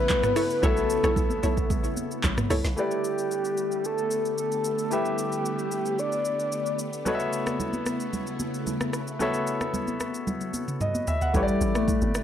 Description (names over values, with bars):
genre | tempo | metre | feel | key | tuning
amapiano | 112 BPM | 4/4 | straight | unclear | A4 = 440 Hz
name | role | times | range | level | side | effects
soft octave-layered synth lead | melody | 0.0-6.8, 11.4-12.2 s | G3 to D5 | -27 LUFS | left 1 dB | chorus, tape echo
clear concert grand piano | accompaniment | 0.0-12.2 s | A3 to F#5 | -31 LUFS | left 2 dB | none
string machine, violas | sustained chords | 0.0-11.3 s | C#3 to G4 | -34 LUFS | equal | ensemble chorus
hollow log drum bass | bass | 0.0-2.8, 11.3-12.2 s | G1 to C2 | -28 LUFS | equal | none
afro-pop drum kit | drums | 0.1-12.2 s | handclaps, hi-hat, kick drum, rim click, shaker, snare drum, toms | -30 LUFS | equal | none
congas | percussion | 0.1-2.5, 7.1-12.2 s | none | -34 LUFS | right 2 dB | none
analog pluck | stabs | 0.4-2.6 s | E4 to C#5 | -32 LUFS | equal | chorus, tape echo
room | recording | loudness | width
digital ambience | dry, gritty hardware recording | -24 LUFS | side -10 dB against mid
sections
0.0-2.8 A section; 2.8-11.3 B section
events
drop 0.0-2.8; drum fill 10.3-11.3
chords
0.0 B9sus4; 2.8 A9sus4; 7.1 B9sus4; 11.3 A9sus4